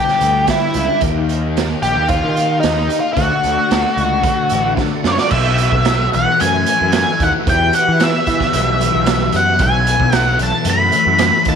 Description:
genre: psychedelic rock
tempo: 112 BPM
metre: 4/4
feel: straight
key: unclear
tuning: A4 = 440 Hz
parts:
  - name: octave-fuzz lead guitar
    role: melody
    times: 0.0-11.6 s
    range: D#4 to B5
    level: -16 LUFS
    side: equal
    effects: distortion, slapback echo
  - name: bright tonewheel organ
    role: sustained chords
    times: 0.0-11.6 s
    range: F#4 to G5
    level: -26 LUFS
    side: right 13 dB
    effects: slow rotary speaker, overdrive, chorus vibrato
  - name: thick fuzz guitar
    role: riff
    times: 0.0-11.6 s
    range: G2 to E4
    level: -21 LUFS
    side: left 11 dB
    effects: distortion, phaser
  - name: raw garage drum kit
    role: drums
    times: 0.1-11.6 s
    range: crash cymbal, hi-hat, kick drum, snare drum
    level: -20 LUFS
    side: right 5 dB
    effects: none
  - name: fuzz picked electric bass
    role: bass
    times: 0.2-11.6 s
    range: A1 to E3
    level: -20 LUFS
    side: equal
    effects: overdrive
room: light reverb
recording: 1960s-style stereo with parts hard left and right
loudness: -13 LUFS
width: side -7 dB against mid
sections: 0.0-5.3 A section; 5.3-11.6 B section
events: drum fill 4.8-5.3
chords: 0.0 G; 1.0 D#; 3.2 D; 5.3 B7sus4; 7.5 Emadd9; 9.6 B7sus4

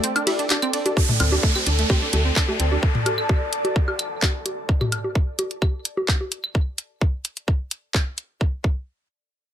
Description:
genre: minimal techno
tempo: 129 BPM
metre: 4/4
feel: straight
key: unclear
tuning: A4 = 440 Hz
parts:
  - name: resonant blip pluck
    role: riff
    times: 0.0-2.8 s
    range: A3 to E4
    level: -27 LUFS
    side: right 3 dB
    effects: chorus, sidechain pumping, tape echo
  - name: garage drum kit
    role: drums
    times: 0.0-8.3 s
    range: handclaps, hi-hat, ride cymbal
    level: -24 LUFS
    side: equal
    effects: none
  - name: ethereal airy pad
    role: texture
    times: 0.0-4.7 s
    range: A4 to A5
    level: -29 LUFS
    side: left 1 dB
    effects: ensemble chorus, built-in reverb, sidechain pumping
  - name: electronic woodblock, bongos, claves and toms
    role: percussion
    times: 0.2-6.5 s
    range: none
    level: -26 LUFS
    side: left 1 dB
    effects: none
  - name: electronic kick drum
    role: drums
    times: 1.0-8.8 s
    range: none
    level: -20 LUFS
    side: equal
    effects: none
  - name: downlifter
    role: sound effects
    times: 1.0-4.7 s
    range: none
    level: -27 LUFS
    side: right 1 dB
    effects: none
  - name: woody FM bass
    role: bass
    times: 1.2-2.8 s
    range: D2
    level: -21 LUFS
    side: equal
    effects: sidechain pumping
room: light reverb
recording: none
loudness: -20 LUFS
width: side -10 dB against mid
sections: 1.0-8.4 A section; 8.4-9.5 B section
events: break 0.0-1.0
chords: 0.0 D5; 8.4 N.C.

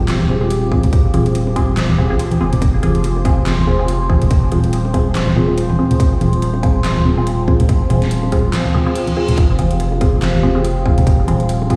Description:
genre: deep dubstep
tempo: 142 BPM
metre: 4/4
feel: swing 56% on 16ths, half-time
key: F minor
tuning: A4 = 440 Hz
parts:
  - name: overtone-sweeping drone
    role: sustained chords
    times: 0.0-11.8 s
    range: F3 to C5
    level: -25 LUFS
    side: equal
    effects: chorus, built-in reverb, phaser
  - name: saturated sub bass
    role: bass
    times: 0.0-11.8 s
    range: Eb1 to C2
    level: -20 LUFS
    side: equal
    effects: none
  - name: dubstep drum kit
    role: drums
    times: 0.1-11.8 s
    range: handclaps, hi-hat, snare drum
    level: -28 LUFS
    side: equal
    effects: none
  - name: congas and bongos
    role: percussion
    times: 0.2-11.7 s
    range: none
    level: -22 LUFS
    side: equal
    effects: dub echo
  - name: filtered dub chord stab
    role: stabs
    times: 0.3-11.8 s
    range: C4 to Ab4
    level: -24 LUFS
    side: equal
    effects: phaser, dub echo
  - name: electronic kick drum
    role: drums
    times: 0.7-11.8 s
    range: none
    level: -17 LUFS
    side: equal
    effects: none
  - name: reverse cymbal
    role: sound effects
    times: 8.7-9.4 s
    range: none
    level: -34 LUFS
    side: equal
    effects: none
room: light reverb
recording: played on a big sound system in a bare room, stone room reverb, vinyl crackle, studio ambience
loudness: -15 LUFS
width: mono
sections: 0.0-11.8 A section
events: reverse cymbal 8.7-9.4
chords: 0.0 Fm

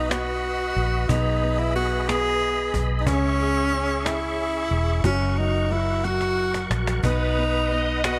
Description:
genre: six-eight pop ballad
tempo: 61 BPM (dotted quarters)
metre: 6/8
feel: straight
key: B major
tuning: A4 = 440 Hz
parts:
  - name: warm tenor saxophone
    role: melody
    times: 0.0-8.2 s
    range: C#4 to G#4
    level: -27 LUFS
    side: equal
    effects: none
  - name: warm concert grand piano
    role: accompaniment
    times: 0.0-8.2 s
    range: F#3 to G#4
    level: -33 LUFS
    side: equal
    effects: ensemble chorus
  - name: tonewheel organ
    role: sustained chords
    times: 0.0-8.2 s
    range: F#4 to D#6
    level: -34 LUFS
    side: equal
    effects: chorus vibrato, fast rotary speaker
  - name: vintage muted fingered electric bass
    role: bass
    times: 0.0-8.2 s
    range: E1 to C#2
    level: -28 LUFS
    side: equal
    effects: none
  - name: cajon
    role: drums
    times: 0.1-8.2 s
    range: none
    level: -30 LUFS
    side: equal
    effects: none
  - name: dark studio violin section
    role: second line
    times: 7.0-8.2 s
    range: B4 to D#5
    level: -31 LUFS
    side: equal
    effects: none
room: moderate plate reverb, RT60 3.4 s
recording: bright 1980s-style digital production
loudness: -23 LUFS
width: mono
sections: 0.0-8.2 A section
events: drum fill 6.0-7.0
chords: 0.0 B; 1.1 G#m/B; 3.1 C#m; 5.0 F#; 7.0 B

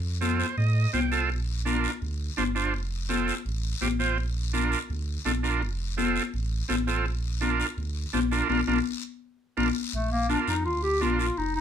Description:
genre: latin, cumbia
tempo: 167 BPM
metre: 4/4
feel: straight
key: Bb major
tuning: A4 = 440 Hz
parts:
  - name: sub bass with octave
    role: bass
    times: 0.0-11.6 s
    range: F1 to A2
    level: -29 LUFS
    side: right 1 dB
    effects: none
  - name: overdriven combo organ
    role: accompaniment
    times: 0.2-11.3 s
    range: C4 to A5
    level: -28 LUFS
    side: right 5 dB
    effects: none
  - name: congas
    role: percussion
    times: 0.2-11.6 s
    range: none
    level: -30 LUFS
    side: left 9 dB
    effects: none
  - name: guiro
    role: percussion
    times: 0.2-11.6 s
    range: none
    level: -39 LUFS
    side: left 7 dB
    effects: none
  - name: warm clarinet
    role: melody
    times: 9.9-11.6 s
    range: A3 to G4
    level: -26 LUFS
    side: left 2 dB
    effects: none
room: moderate studio reverb, RT60 0.5 s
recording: band playing live in one room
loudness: -25 LUFS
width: side -9 dB against mid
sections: 0.0-9.9 A section; 9.9-11.6 B section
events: transistor combo organ fill 0.2-1.3; band accent 8.5-9.9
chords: 0.0 F7; 1.3 Bb; 2.7 F; 4.2 Bb; 5.6 F; 7.1 Bb

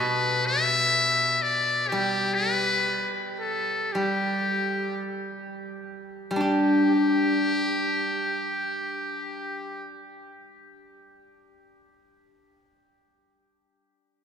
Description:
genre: chinese traditional, Chinese chamber ensemble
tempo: free time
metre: none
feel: none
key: G gong mode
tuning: A4 = 440 Hz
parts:
  - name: trumpet with metal mute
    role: melody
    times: 0.0-9.9 s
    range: G4 to E5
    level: -26 LUFS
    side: left 2 dB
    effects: none
  - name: steel-string zither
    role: accompaniment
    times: 0.0-12.4 s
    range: B2 to G4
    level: -27 LUFS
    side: equal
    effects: none
room: wet cathedral reverb, RT60 6.5 s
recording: recorded in a church or concert hall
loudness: -22 LUFS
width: side -7 dB against mid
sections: 0.0-6.4 A section; 6.4-12.0 B section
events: slowing down 1.9-6.4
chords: none

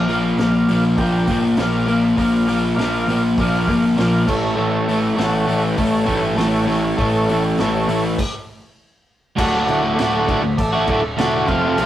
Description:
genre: garage rock duo or trio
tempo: 100 BPM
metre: 4/4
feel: straight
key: unclear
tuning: A4 = 440 Hz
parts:
  - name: combo organ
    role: sustained chords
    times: 0.0-11.9 s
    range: A4 to G5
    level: -23 LUFS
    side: equal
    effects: none
  - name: crunchy overdriven guitar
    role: riff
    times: 0.0-11.9 s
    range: D2 to F#4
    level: -17 LUFS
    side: equal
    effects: none
  - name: overdriven picked electric bass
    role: bass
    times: 0.0-11.9 s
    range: D1 to C2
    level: -26 LUFS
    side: equal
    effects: none
  - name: vintage drum kit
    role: drums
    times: 0.1-11.9 s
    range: crash cymbal, hi-hat, kick drum, snare drum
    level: -26 LUFS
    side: right 1 dB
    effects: none
room: moderate stone room reverb, RT60 1.2 s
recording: rough rehearsal-room recording, warm saturation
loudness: -16 LUFS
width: side -12 dB against mid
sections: 0.0-9.4 A section; 9.4-11.9 B section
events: stop 8.2-9.4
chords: 0.0 Bb; 4.3 A; 9.4 D

